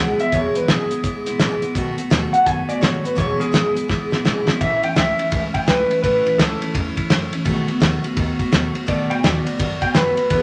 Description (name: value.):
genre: rockabilly.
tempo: 168 BPM.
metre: 4/4.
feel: swing 63% on 8ths.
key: unclear.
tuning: A4 = 442 Hz.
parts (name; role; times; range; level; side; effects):
electric guitar through a small old amp; melody; 0.0-6.7, 8.9-10.4 s; G#4 to G#5; -23 LUFS; equal; vibrato effect.
picked steel-string acoustic guitar; accompaniment; 0.0-10.4 s; E2 to F#4; -25 LUFS; equal; none.
upright bass; bass; 0.0-10.4 s; E1 to G#2; -33 LUFS; equal; none.
cloth-damped thuddy drum kit; drums; 0.2-10.4 s; hi-hat, kick drum, ride cymbal, snare drum; -22 LUFS; equal; none.
room: wet club reverb, RT60 0.9 s.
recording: none.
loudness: -19 LUFS.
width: mono.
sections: 0.0-4.6 A section; 4.6-10.4 B section.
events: drum fill 3.9-4.6.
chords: 0.0 E; 1.8 B7; 3.2 E; 4.6 A; 7.5 B7.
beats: | 0.33 0.68 1.04 1.40 | 1.75 2.11 2.47 2.82 | 3.18 3.54 3.89 4.25 | 4.61 4.96 5.32 5.68 | 6.03 6.39 6.74 7.10 | 7.46 7.81 8.17 8.53 | 8.88 9.24 9.59 9.95 | 10.30.